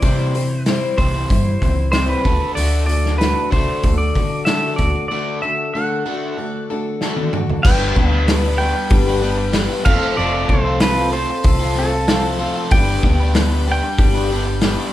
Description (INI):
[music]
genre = folk rock and heartland rock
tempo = 95 BPM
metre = 4/4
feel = straight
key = G mixolydian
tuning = A4 = 440 Hz
[part]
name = pedal steel guitar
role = melody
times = 0.0-14.9 s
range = A4 to G5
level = -23 LUFS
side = right 1 dB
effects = none
[part]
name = picked plugged-in twelve-string acoustic guitar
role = accompaniment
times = 0.0-14.9 s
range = G2 to C5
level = -23 LUFS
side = left 4 dB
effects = none
[part]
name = crunchy overdriven guitar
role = riff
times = 0.0-14.9 s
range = C3 to B4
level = -26 LUFS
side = right 1 dB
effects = none
[part]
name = hollow-body short-scale fingered electric bass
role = bass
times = 0.0-14.7 s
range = F1 to D3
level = -20 LUFS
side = equal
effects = none
[part]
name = loose indie drum kit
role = drums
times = 0.0-14.8 s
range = crash cymbal, hi-hat, kick drum, snare drum, toms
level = -19 LUFS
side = equal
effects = none
[part]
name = tonewheel organ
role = sustained chords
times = 7.6-14.9 s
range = B3 to B4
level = -32 LUFS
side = right 1 dB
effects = none
[sound]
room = light reverb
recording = band playing live in one room, lossy compression artefacts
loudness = -15 LUFS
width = side -14 dB against mid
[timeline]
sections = 0.0-7.6 A section; 7.6-14.9 B section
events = break 5.1-7.6; drum fill 7.0-7.6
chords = 0.0 C; 2.3 D; 7.6 G; 9.9 F; 12.7 G